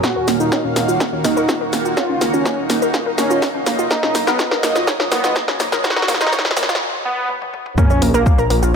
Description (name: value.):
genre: melodic techno.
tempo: 124 BPM.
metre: 4/4.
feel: straight.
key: unclear.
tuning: A4 = 442 Hz.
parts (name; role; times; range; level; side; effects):
wide unison lead; melody; 0.0-8.4 s; Bb3 to Gb4; -22 LUFS; equal; sidechain pumping, ping-pong delay.
lush unison pad; sustained chords; 0.0-8.8 s; Eb3 to F5; -25 LUFS; equal; chorus, phaser, sidechain pumping.
warbly dusty pluck; arpeggios; 0.0-8.7 s; Bb3 to Bb5; -21 LUFS; equal; chorus, sidechain pumping, ping-pong delay.
analog drone; drone; 0.0-6.8 s; Bb2; -35 LUFS; right 1 dB; none.
electronic kick drum; drums; 0.0-8.4 s; none; -18 LUFS; equal; overdrive, high-pass filter on kick, small room ambience.
punchy analog drum machine; drums; 0.0-8.7 s; hi-hat, shaker, snare drum, toms; -20 LUFS; equal; overdrive, small room ambience.
granular cloud pad; texture; 0.0-8.8 s; Eb4 to Ab5; -28 LUFS; right 2 dB; built-in reverb, sidechain pumping.
swelling detuned saw bass; bass; 0.2-8.7 s; Eb1 to Eb2; -25 LUFS; equal; sidechain pumping.
sub drop; sound effects; 7.8-8.8 s; none; -23 LUFS; equal; none.
room: moderate lush hall reverb, RT60 2.3 s.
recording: high-pass filter.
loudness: -15 LUFS.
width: side -6 dB against mid.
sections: 0.0-7.8 A section.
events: build-up 0.0-7.8; drum fill 0.0-6.8, 7.3-7.8; filter sweep on synth arpeggio sound 0.0-7.8; filter sweep on analog synth lead 0.0-7.8; filter sweep 0.0-7.8; break 6.8-7.8; impact 7.8-8.8.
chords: 0.0 Ebm; 3.9 B; 7.8 Bbm.